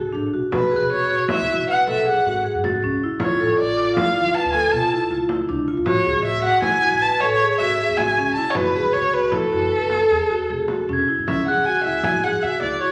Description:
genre	contemporary instrumental, chamber music in an uneven meter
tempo	156 BPM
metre	7/4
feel	straight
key	B dorian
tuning	A4 = 440 Hz
part	rich violin	melody	0.0-12.9 s	A4 to A5	-22 LUFS	equal	none
part	vibraphone with medium hard mallets	arpeggios	0.0-12.9 s	C#4 to B4	-24 LUFS	equal	none
part	upright bass	bass	0.0-12.8 s	E1 to C#3	-35 LUFS	equal	none
part	frame drum	percussion	0.5-12.8 s	none	-32 LUFS	equal	none
part	glockenspiel with soft plastic mallets	texture	0.8-12.6 s	F#6 to B6	-30 LUFS	equal	none
room	wet recital hall reverb, RT60 1.4 s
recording	nothing above 10.8 kHz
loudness	-20 LUFS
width	mono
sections	0.0-11.3 A section; 11.3-12.9 B section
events	none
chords	0.0 D; 0.5 Bsus2; 3.2 Dm; 5.9 Amaj7; 8.6 F#m; 11.3 C#m

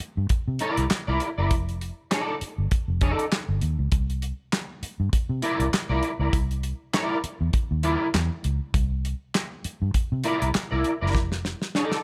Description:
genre	funk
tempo	100 BPM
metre	4/4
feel	swing 56% on 16ths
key	C mixolydian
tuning	A4 = 440 Hz
part	vintage muted fingered electric bass	bass	0.0-11.5 s	F1 to C3	-28 LUFS	equal	none
part	damped 70s drum kit	drums	0.0-12.0 s	handclaps, hi-hat, kick drum, snare drum	-28 LUFS	equal	none
part	electric guitar at the edge of break-up	accompaniment	0.6-12.0 s	Eb4 to D5	-29 LUFS	equal	ensemble chorus
room	light reverb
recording	none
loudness	-26 LUFS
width	mono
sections	0.0-12.0 A section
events	drum fill 11.1-12.0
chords	0.0 C9; 1.5 F13; 3.9 C9; 11.1 F13

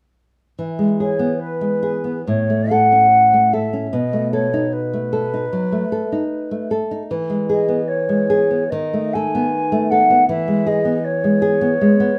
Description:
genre	romantic duo for flute and classical guitar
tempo	64-80 BPM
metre	4/4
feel	rubato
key	E major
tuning	A4 = 438 Hz
part	nylon-string guitar	accompaniment	0.6-12.2 s	A2 to A4	-21 LUFS	equal	none
part	mellow concert flute	melody	1.0-12.2 s	B4 to G#5	-20 LUFS	equal	none
room	light reverb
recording	none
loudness	-18 LUFS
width	mono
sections	0.6-12.2 A section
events	none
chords	0.6 E; 2.3 F#m/A; 3.9 B7; 7.1 E; 8.7 B7/D#; 10.3 E

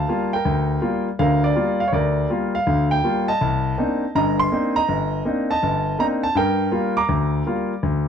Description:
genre	solo jazz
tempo	163 BPM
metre	4/4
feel	swing 66% on 8ths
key	G minor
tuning	A4 = 440 Hz
part	clear concert grand piano	solo	0.0-8.1 s	G1 to D6	-18 LUFS	equal	none
room	moderate club reverb, RT60 0.6 s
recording	dark, warm production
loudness	-18 LUFS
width	side -8 dB against mid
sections	0.0-8.1 A section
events	none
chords	0.0 Gm7; 3.4 Cm9; 6.4 Gm7

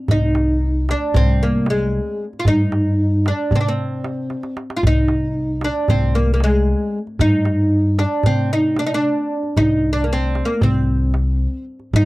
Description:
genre	Turkish makam ensemble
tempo	228 BPM (eighths)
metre	9/8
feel	straight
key	C makam nihavent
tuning	A4 = 440 Hz
part	oud	melody	0.1-12.1 s	Ab3 to F4	-19 LUFS	equal	none
part	upright bass	bass	0.1-12.1 s	C2 to C3	-19 LUFS	equal	none
part	darbuka	percussion	0.1-12.1 s	none	-21 LUFS	right 1 dB	none
room	little or no reverb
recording	dry, close 1970s-style studio recording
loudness	-16 LUFS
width	side -19 dB against mid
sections	0.0-12.1 A section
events	drum fill 4.3-4.8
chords	none

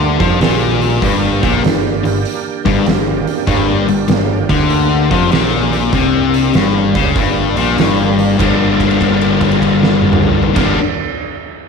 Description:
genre	blues rock power trio and southern rock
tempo	98 BPM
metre	4/4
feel	swing 66% on 8ths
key	G minor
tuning	A4 = 445 Hz
part	overdriven tonewheel organ	sustained chords	0.0-10.8 s	G3 to D5	-21 LUFS	right 10 dB	slow rotary speaker, chorus vibrato
part	sludgy distorted guitar	riff	0.0-10.8 s	G2 to D4	-14 LUFS	left 7 dB	overdrive
part	growling picked electric bass	bass	0.0-10.8 s	G1 to F2	-19 LUFS	right 3 dB	overdrive
part	oversized low-tuned drum kit	drums	0.2-10.7 s	crash cymbal, hi-hat, kick drum, snare drum, toms	-17 LUFS	right 3 dB	none
room	moderate echo chamber reverb, RT60 1.9 s, studio reverb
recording	1960s-style stereo with parts hard left and right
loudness	-11 LUFS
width	side -5 dB against mid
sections	0.0-8.4 A section; 8.4-10.8 B section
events	held note 8.4-10.5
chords	0.0 Gm; 8.4 Gm7

